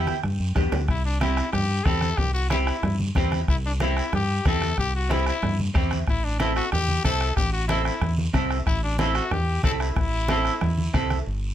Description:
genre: latin, cumbia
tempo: 185 BPM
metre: 4/4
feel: straight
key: unclear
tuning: A4 = 440 Hz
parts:
  - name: growling trumpet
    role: second line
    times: 0.0-11.1 s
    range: D4 to A4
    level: -28 LUFS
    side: left 4 dB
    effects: none
  - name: semi-hollow electric guitar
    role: accompaniment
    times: 0.0-11.2 s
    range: B3 to A4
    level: -27 LUFS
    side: right 2 dB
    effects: lush chorus
  - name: deep dub fingered electric bass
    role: bass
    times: 0.0-11.5 s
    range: G1 to G2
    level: -25 LUFS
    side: equal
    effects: none
  - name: bombo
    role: percussion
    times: 0.1-11.3 s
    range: none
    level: -26 LUFS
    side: left 1 dB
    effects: none
  - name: congas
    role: percussion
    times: 0.1-11.3 s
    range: none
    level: -30 LUFS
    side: right 2 dB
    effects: none
  - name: guiro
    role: percussion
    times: 0.1-11.5 s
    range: none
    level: -39 LUFS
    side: right 3 dB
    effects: none
room: little or no reverb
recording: close, detailed microphones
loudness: -21 LUFS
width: side -11 dB against mid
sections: 0.9-11.3 A section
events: drum fill 0.1-0.9; trumpet solo 0.9-11.3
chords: 0.2 G; 0.9 C; 6.1 Am

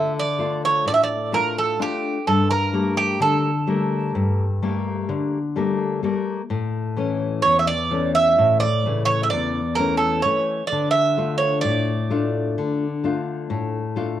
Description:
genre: greek folk, Greek bouzouki band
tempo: 128 BPM (eighths)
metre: 9/8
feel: straight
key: D harmonic minor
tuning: A4 = 440 Hz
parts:
  - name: Greek bouzouki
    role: melody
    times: 0.0-14.2 s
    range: G4 to E5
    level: -20 LUFS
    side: right 4 dB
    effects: none
  - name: nylon-string guitar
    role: accompaniment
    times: 0.0-14.2 s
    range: E2 to F4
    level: -22 LUFS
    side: left 3 dB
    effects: cassette tape
room: wet booth ambience, RT60 0.2 s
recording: home recording on cassette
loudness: -19 LUFS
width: side -11 dB against mid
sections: 0.0-14.2 A section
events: none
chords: 0.0 Dm; 2.3 Gmadd9; 6.5 A; 10.7 Dm

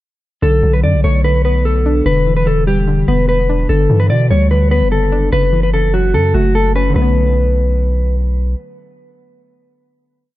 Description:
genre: hip hop, trap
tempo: 147 BPM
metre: 4/4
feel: half-time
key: B minor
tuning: A4 = 442 Hz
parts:
  - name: mellow electric guitar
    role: melody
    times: 0.4-8.1 s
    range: F#4 to D5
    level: -17 LUFS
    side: equal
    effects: lush chorus, low-pass filter, tape echo
  - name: soft round pluck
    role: accompaniment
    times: 0.4-10.4 s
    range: C#3 to D4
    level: -18 LUFS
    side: left 2 dB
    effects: chorus, low-pass filter, tape echo
  - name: long sustained 808-style bass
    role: bass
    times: 0.4-8.6 s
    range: E1 to B2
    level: -14 LUFS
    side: equal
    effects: none
room: little or no reverb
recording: echo-heavy mix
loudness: -11 LUFS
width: side -16 dB against mid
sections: 0.4-7.0 hook; 7.0-10.2 final chord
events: none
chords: 0.4 Bm7; 2.1 Em7; 3.7 G6; 5.3 F#m7; 7.0 Bm7

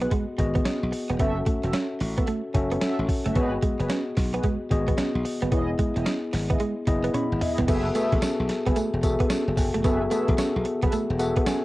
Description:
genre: R&B, new jack swing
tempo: 111 BPM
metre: 4/4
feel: swing 63% on 16ths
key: F# dorian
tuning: A4 = 440 Hz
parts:
  - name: tine electric piano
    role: accompaniment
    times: 0.0-11.6 s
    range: B3 to B5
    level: -27 LUFS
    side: left 2 dB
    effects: cassette tape
  - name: direct-recorded clean electric guitar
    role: riff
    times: 0.0-11.6 s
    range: G#3 to C#4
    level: -29 LUFS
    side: right 4 dB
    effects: analog chorus, cassette tape
  - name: mellow synth brass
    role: stabs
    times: 0.0-10.9 s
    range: E4 to F#5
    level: -33 LUFS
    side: equal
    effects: chorus, cassette tape, tape echo
  - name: slap bass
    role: bass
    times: 0.0-11.3 s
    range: E1 to B1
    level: -28 LUFS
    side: equal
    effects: none
  - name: boom bap sampler-style drum kit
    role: drums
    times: 0.0-11.6 s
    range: crash cymbal, hi-hat, kick drum, snare drum, tambourine, toms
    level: -26 LUFS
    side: equal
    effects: cassette tape
room: light reverb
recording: home recording on cassette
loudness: -22 LUFS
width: side -18 dB against mid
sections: 0.0-7.7 A section; 7.7-11.6 B section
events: tine electric piano fill 6.9-7.7, 10.9-11.6; drum fill 7.1-7.7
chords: 0.0 G#m7; 1.2 F#m7; 3.4 G#m7; 5.5 Emaj7; 7.7 F#m11

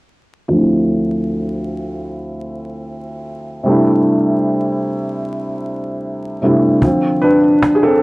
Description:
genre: lo-fi hip hop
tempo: 76 BPM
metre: 4/4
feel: swing 56% on 16ths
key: D minor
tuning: A4 = 445 Hz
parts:
  - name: felt-muted upright piano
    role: accompaniment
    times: 0.5-8.0 s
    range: D2 to B4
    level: -14 LUFS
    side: equal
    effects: cassette tape, low-pass filter
  - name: cajon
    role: drums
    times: 6.8-7.8 s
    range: none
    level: -18 LUFS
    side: equal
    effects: none
room: light reverb, small room ambience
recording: dry, gritty hardware recording, vinyl crackle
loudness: -13 LUFS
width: side -23 dB against mid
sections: 0.5-6.8 A section; 6.8-8.0 B section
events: filter sweep on felt piano 0.5-6.8; felt piano solo 6.8-8.0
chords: 0.5 Dm9; 3.7 C69; 6.8 Dm7

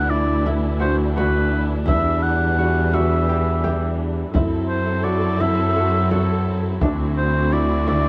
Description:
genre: contemporary instrumental, chamber music in an uneven meter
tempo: 170 BPM (eighths)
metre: 7/8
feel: straight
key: unclear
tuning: A4 = 440 Hz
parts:
  - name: warm oboe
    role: melody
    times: 0.0-8.1 s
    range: A4 to F#5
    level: -26 LUFS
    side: equal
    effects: none
  - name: rich symphonic string section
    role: sustained chords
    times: 0.0-8.1 s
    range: D3 to A4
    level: -28 LUFS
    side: equal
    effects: none
  - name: concert harp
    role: arpeggios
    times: 0.0-8.1 s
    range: D4 to G4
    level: -28 LUFS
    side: equal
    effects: none
  - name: warm double bass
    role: bass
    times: 0.0-8.1 s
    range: D2 to F#2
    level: -23 LUFS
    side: equal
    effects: none
  - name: frame drum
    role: percussion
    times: 0.5-8.1 s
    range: none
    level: -26 LUFS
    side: equal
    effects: none
room: light reverb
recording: dark, warm production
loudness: -20 LUFS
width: mono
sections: 0.0-4.3 A section; 4.3-8.1 B section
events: none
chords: 0.0 Dadd9; 1.9 Em7; 4.3 F#m7b5; 6.8 D9

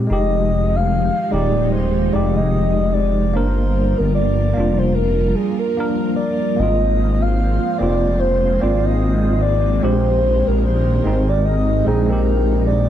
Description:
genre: trip hop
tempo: 74 BPM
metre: 4/4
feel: swing 58% on 16ths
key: F dorian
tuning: A4 = 440 Hz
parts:
  - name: tine electric piano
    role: accompaniment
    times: 0.0-12.9 s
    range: Bb2 to Bb4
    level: -22 LUFS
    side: equal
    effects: harmonic tremolo, vintage 12-bit sampler grit
  - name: pure breathy sine lead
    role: melody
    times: 0.1-12.9 s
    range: Ab4 to F5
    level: -21 LUFS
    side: equal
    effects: wide subtle chorus, cassette tape, tape echo
  - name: string machine, cellos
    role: sustained chords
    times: 0.1-12.9 s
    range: F3 to C5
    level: -24 LUFS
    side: left 1 dB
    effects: phaser, ensemble chorus
  - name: dark detuned saw bass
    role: bass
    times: 0.1-12.9 s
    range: Eb1 to Bb1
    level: -18 LUFS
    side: equal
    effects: none
room: digital ambience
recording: none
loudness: -15 LUFS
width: side -10 dB against mid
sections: 0.1-12.9 A section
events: none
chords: 0.1 Fm7; 3.3 Gm7; 6.6 Ab6; 9.8 Bb7sus4

